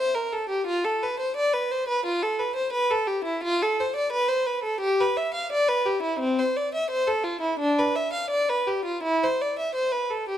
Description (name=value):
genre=classical, baroque-style suite movement for unaccompanied violin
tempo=86 BPM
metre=4/4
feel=rubato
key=C major from 3.4 s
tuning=A4 = 438 Hz
part: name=clear violin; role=solo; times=0.0-10.4 s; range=C4 to F5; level=-23 LUFS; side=equal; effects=none
room=light reverb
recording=dark, warm production, faint mains hum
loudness=-23 LUFS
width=side -10 dB against mid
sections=0.0-10.4 A section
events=none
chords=none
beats=| 0.67 1.36 2.05 2.73 | 3.43 4.13 4.82 5.51 | 6.20 6.90 7.60 8.31 | 9.04 9.75